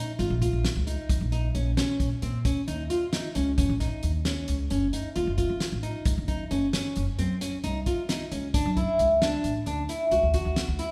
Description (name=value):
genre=progressive instrumental, band music in an uneven meter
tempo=266 BPM (eighths)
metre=11/8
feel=straight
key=unclear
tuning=A4 = 440 Hz
part: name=nylon-string guitar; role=arpeggios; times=0.0-10.9 s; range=C4 to F#4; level=-30 LUFS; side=equal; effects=none
part: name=upright bass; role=bass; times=0.2-10.9 s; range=Gb1 to Bb2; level=-32 LUFS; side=equal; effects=none
part: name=warm soul drum kit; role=drums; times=0.2-10.9 s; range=hi-hat, kick drum, snare drum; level=-32 LUFS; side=equal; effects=none
room=moderate scoring stage reverb, RT60 2.0 s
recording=recorded in a church or concert hall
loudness=-27 LUFS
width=mono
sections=0.0-10.9 A section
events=none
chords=0.0 Bbm; 3.6 Gb5; 8.5 Dadd9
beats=0.19 0.42 0.64 0.87 | 1.09 1.32 1.55 1.77 2.00 2.22 2.45 2.68 2.90 3.13 3.35 | 3.58 3.81 4.03 4.26 4.48 4.71 4.93 5.16 5.38 5.61 5.84 | 6.06 6.29 6.51 6.74 6.96 7.19 7.41 7.64 7.87 8.09 8.32 | 8.54 8.77 8.99 9.22 9.44 9.67 9.89 10.12 10.34 10.57 10.79